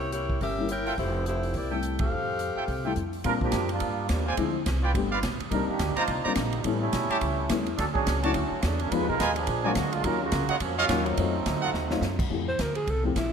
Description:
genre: jazz, big band swing.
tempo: 212 BPM.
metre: 4/4.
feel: swing 59% on 8ths.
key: F major.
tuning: A4 = 441 Hz.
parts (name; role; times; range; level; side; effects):
warm saxophone section; melody; 0.0-2.9 s; A3 to G5; -30 LUFS; left 2 dB; none.
upright bass; bass; 0.0-13.3 s; F1 to Bb2; -31 LUFS; right 1 dB; none.
swinging big-band drum kit; drums; 0.1-13.2 s; crash cymbal, hi-hat, kick drum, ride cymbal, snare drum; -33 LUFS; right 1 dB; none.
dark baby grand piano; accompaniment; 0.6-13.2 s; F3 to G4; -31 LUFS; left 6 dB; none.
clear trumpet section; stabs; 0.9-11.7 s; Eb4 to Bb5; -31 LUFS; right 3 dB; none.
bright trombone section; second line; 3.2-12.2 s; Db3 to Cb5; -29 LUFS; right 4 dB; none.
breathy alto saxophone; melody; 12.5-13.3 s; C4 to C5; -29 LUFS; right 1 dB; none.
room: moderate scoring stage reverb, RT60 2.0 s.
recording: none.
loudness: -24 LUFS.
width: side -7 dB against mid.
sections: 0.0-3.2 A section; 3.2-12.3 B section; 12.3-13.3 C section.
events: band accent 2.0; trombone section solo 3.2-12.3; drum fill 11.7; alto saxophone solo 12.3-13.3.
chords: 0.0 C7b9; 1.0 Fmaj9; 3.2 Bb6; 4.4 Dm7b5; 4.9 G7; 5.5 Cm9; 6.6 A7; 7.8 Dmaj7; 8.9 Fm7b5; 9.5 Bb7b13; 10.0 Ebm9; 11.2 F7b9; 12.3 Fmaj9.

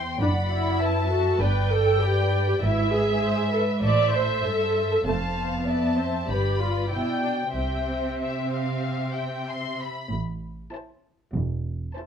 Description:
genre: quick classical-period movement for string orchestra.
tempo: 98 BPM.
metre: 4/4.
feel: straight.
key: C major.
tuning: A4 = 440 Hz.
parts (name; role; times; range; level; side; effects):
muted studio violin section; melody; 0.0-12.1 s; E5 to C6; -32 LUFS; left 4 dB; none.
muted studio violin section; second line; 0.0-12.1 s; A4 to G5; -31 LUFS; left 2 dB; none.
muted studio cello section; bass; 0.0-11.8 s; E2 to C3; -28 LUFS; right 1 dB; none.
muted studio viola section; accompaniment; 0.2-12.1 s; A3 to D5; -26 LUFS; right 1 dB; none.
muted studio double bass section; bass; 0.2-11.8 s; E1 to C2; -29 LUFS; right 1 dB; none.
room: light reverb.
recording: minimal, uncompressed stereo recording.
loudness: -22 LUFS.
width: side -8 dB against mid.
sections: 0.0-10.1 A section; 10.1-12.1 B section.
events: none.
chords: 0.2 D/F#; 1.4 G; 2.6 E/G#; 3.8 Am; 5.1 F; 6.3 G; 7.5 C; 10.1 Am.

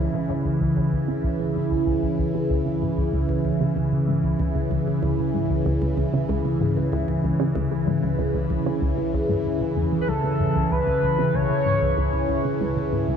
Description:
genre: ambient.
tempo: 95 BPM.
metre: 4/4.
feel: straight.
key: C# minor.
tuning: A4 = 441 Hz.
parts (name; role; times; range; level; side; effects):
phased analog pad; sustained chords; 0.0-13.2 s; C#3 to E4; -23 LUFS; equal; phaser, chorus.
tight sequenced synth; riff; 0.0-13.2 s; C#2 to E3; -26 LUFS; equal; chorus, ping-pong delay.
pulse-width lead; melody; 10.0-12.3 s; A4 to C#5; -24 LUFS; equal; chorus, ping-pong delay.
room: wet cathedral reverb, RT60 7.0 s.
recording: in a vast, echoing space.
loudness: -20 LUFS.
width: side -7 dB against mid.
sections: 0.0-13.2 A section.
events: none.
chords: 0.0 C#m.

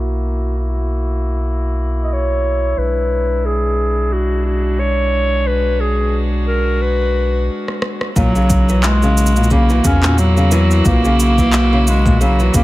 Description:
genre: folktronica.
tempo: 89 BPM.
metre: 4/4.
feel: swing 56% on 16ths.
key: unclear.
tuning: A4 = 442 Hz.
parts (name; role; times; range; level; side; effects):
warm string quartet; sustained chords; 0.0-12.6 s; G#3 to F#4; -23 LUFS; equal; none.
round analog bass; bass; 0.0-12.6 s; B1 to E2; -16 LUFS; equal; none.
clear clarinet; melody; 2.0-12.6 s; F#3 to D#5; -18 LUFS; equal; digital delay.
electronic rim click, shaker and handclaps; drums; 7.7-12.6 s; none; -22 LUFS; equal; low-pass filter on perc, low-pass filter on snare, low-pass filter on room.
fingerpicked old ladder-braced acoustic guitar; arpeggios; 8.2-12.6 s; A#2 to E3; -20 LUFS; left 1 dB; digital delay.
electronic kick drum; drums; 8.2-12.6 s; none; -17 LUFS; equal; none.
room: light reverb.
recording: low-pass filter.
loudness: -13 LUFS.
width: side -17 dB against mid.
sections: 0.0-8.2 A section; 8.2-12.6 B section.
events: filter sweep 0.0-8.2; break 7.5-8.2; drum fill 7.7-8.2.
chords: 0.0 F#7/B; 2.8 E7/B; 8.2 F#7/B.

